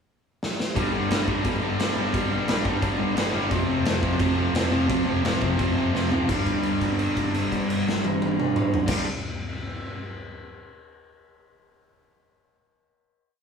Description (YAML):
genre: punk rock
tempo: 173 BPM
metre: 4/4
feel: straight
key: unclear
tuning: A4 = 444 Hz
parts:
  - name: raw garage drum kit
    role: drums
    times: 0.4-9.0 s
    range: crash cymbal, kick drum, snare drum, toms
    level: -27 LUFS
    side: left 1 dB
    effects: none
  - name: cranked stack guitar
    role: riff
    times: 0.8-9.0 s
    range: F2 to G3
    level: -26 LUFS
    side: right 5 dB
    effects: overdrive
  - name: distorted electric guitar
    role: riff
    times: 0.8-9.0 s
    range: F2 to G3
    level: -26 LUFS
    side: left 5 dB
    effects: distortion
  - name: overdriven picked electric bass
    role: bass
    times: 0.8-9.0 s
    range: F1 to G2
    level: -32 LUFS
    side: equal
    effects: none
room: light reverb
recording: band playing live in one room, small room reverb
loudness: -22 LUFS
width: side -6 dB against mid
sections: 0.0-0.8 pickup bar; 0.8-6.3 riff; 6.3-9.1 final chord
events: drum fill 0.4-0.8, 5.9-6.3; held note 6.3-8.9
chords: 0.0 N.C.; 0.8 G5; 3.5 F5; 6.3 G5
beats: 0.07 0.41 | 0.76 1.10 1.44 1.79 | 2.13 2.48 2.82 3.17 | 3.51 3.86 4.20 4.55 | 4.90 5.24 5.59 5.94 | 6.29 6.64 6.99 7.33 | 7.68 8.03 8.38 8.73